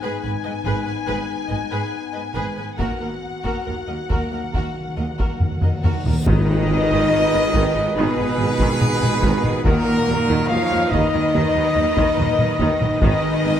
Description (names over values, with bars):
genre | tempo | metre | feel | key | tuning
cinematic, epic orchestral film score | 71 BPM | 4/4 | straight | G# dorian | A4 = 440 Hz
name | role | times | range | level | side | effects
warm symphonic violin section | melody | 0.0-13.6 s | A#4 to G#5 | -28 LUFS | left 5 dB | none
bright symphonic violin section | second line | 0.0-13.6 s | F#4 to D#5 | -32 LUFS | left 2 dB | none
rich symphonic viola section | accompaniment | 0.0-13.5 s | D#3 to B4 | -29 LUFS | right 1 dB | none
mellow French horn section | sustained chords | 0.0-13.6 s | A#3 to F#4 | -27 LUFS | left 6 dB | none
bright symphonic cello section | bass | 0.0-13.6 s | D#2 to E#3 | -27 LUFS | right 2 dB | none
rich symphonic double bass section | bass | 0.2-13.5 s | G#1 to D#2 | -27 LUFS | right 3 dB | none
taiko ensemble | drums | 0.7-13.6 s | none | -22 LUFS | equal | none
cymbal swell and tam-tam | percussion | 2.8-9.6 s | none | -32 LUFS | left 1 dB | none
timpani | percussion | 2.8-10.9 s | G#2 to D#3 | -27 LUFS | equal | none
reverse cymbal and impact | sound effects | 6.0-9.7 s | none | -33 LUFS | equal | none
pipe organ, full organ | sustained chords | 6.3-13.6 s | D#4 to A#5 | -28 LUFS | right 3 dB | none
bright trumpet section | stabs | 6.3-13.6 s | A#4 to E#5 | -22 LUFS | right 1 dB | none
warm tuba | bass | 6.3-13.5 s | G#1 to D#2 | -27 LUFS | right 3 dB | none
room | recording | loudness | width
wet concert hall reverb, RT60 2.2 s | none | -17 LUFS | side -9 dB against mid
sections
0.0-6.3 A section; 6.3-13.6 B section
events
timpani fill 2.8-6.3; drum fill 5.4-6.3; reverse cymbal 6.0; band accent 6.3-7.1; impact 6.3-9.7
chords
0.0 G#m; 2.8 D#m; 6.3 G#m; 9.7 D#m; 13.0 G#m